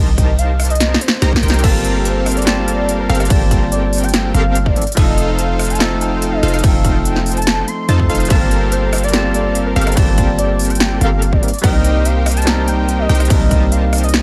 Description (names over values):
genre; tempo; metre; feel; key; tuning
future bass; 144 BPM; 4/4; half-time; G minor; A4 = 437 Hz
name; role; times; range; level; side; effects
warm velvety synth lead; melody; 0.0-14.2 s; Bb4 to C6; -26 LUFS; equal; chorus, sidechain pumping, dub echo
unison pluck; arpeggios; 0.0-14.2 s; F5 to Bb5; -32 LUFS; equal; none
supersaw stab; riff; 0.0-14.2 s; C4 to Bb5; -25 LUFS; equal; vintage 12-bit sampler grit, sidechain pumping
warm 808-style bass; bass; 0.0-14.2 s; F1 to F2; -19 LUFS; equal; sidechain pumping
big-room dance drum kit; drums; 0.2-14.2 s; crash cymbal, hi-hat, rim click, snare drum; -22 LUFS; equal; none
electronic kick drum; drums; 0.2-13.6 s; none; -17 LUFS; equal; none
bell-like tine electric piano; accompaniment; 1.6-14.2 s; F3 to A5; -23 LUFS; equal; sidechain pumping
room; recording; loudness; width
digital ambience; lossy compression artefacts; -15 LUFS; mono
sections
0.0-14.2 A section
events
drum fill 0.8-1.6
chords
0.0 Cm7; 1.6 Gm11; 4.8 F7; 8.3 Gm11; 11.4 Cm7